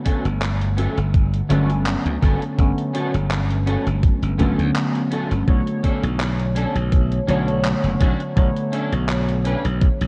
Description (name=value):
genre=vaporwave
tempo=83 BPM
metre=4/4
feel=swing 54% on 16ths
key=unclear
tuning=A4 = 435 Hz
part: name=warbly lo-fi synth keys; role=accompaniment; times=0.0-10.1 s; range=D3 to C#5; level=-26 LUFS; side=equal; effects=phaser, lush chorus, tape echo
part: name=electric guitar at the edge of break-up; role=riff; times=0.0-9.7 s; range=B3 to B4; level=-32 LUFS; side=equal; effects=ensemble chorus, tape echo
part: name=electronic kick drum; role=drums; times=0.1-10.0 s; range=none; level=-20 LUFS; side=equal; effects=none
part: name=gated 80s digital drum machine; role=drums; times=0.1-10.1 s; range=handclaps, hi-hat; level=-33 LUFS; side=equal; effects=gated reverb
part: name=glassy slap bass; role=bass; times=0.2-10.1 s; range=F#1 to D2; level=-24 LUFS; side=equal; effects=tube saturation
room=light reverb, digital ambience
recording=dark, warm production, cassette tape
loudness=-20 LUFS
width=mono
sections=0.0-10.1 A section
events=none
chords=0.0 Gmaj9#11; 5.5 Bm9